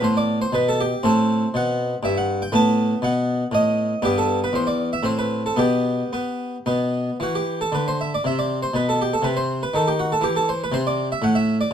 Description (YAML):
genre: classical, baroque-style suite movement for harpsichord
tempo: 119 BPM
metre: 3/4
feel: rubato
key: unclear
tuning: A4 = 440 Hz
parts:
  - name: harpsichord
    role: solo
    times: 0.0-11.7 s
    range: E2 to A5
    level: -19 LUFS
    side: equal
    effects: none
room: light reverb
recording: dark, warm production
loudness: -19 LUFS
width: side -8 dB against mid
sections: 0.0-7.2 A section; 7.2-11.7 A section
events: none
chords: 0.0 Gadd9; 1.0 F#dim/A; 2.5 B7/A; 4.0 Em/G; 5.0 Amadd9; 5.6 N.C.; 7.2 Cmaj9#11; 8.7 B; 10.2 Am11